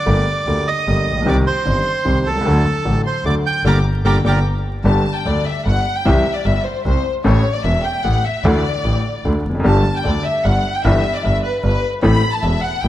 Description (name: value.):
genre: tango.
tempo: 150 BPM.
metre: 3/4.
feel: rubato.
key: G harmonic minor, G major from 4.9 s.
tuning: A4 = 440 Hz.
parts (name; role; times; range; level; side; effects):
bandoneon; melody; 0.0-4.4 s; G4 to G5; -21 LUFS; right 4 dB; none.
warm studio violin section; second line; 0.0-12.9 s; B4 to G6; -22 LUFS; left 2 dB; none.
bright upright piano; accompaniment; 0.1-12.9 s; E1 to A4; -20 LUFS; left 1 dB; none.
bright double bass; bass; 0.1-12.9 s; E1 to D2; -18 LUFS; equal; none.
room: moderate concert hall reverb, RT60 2.2 s.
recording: close, detailed microphones, vinyl crackle.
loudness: -15 LUFS.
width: side -13 dB against mid.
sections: 0.0-4.9 A section; 4.9-12.9 B section.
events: band accent 3.7-4.9; violin section solo 4.9-12.9.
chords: 0.1 Gmadd9; 1.3 Cm; 2.5 D; 3.7 Gm; 4.9 G; 6.1 C; 7.3 A; 8.4 Dadd9; 9.6 G; 10.8 Em/G; 12.0 Am.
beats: | 0.07 0.47 0.87 | 1.26 1.66 2.06 | 2.46 2.85 3.25 | 3.65 4.05 4.46 | 4.86 5.27 5.67 | 6.07 6.46 6.86 | 7.25 7.65 8.05 | 8.45 8.85 9.25 | 9.65 10.05 10.45 | 10.85 11.24 11.64 | 12.04 12.43 12.83.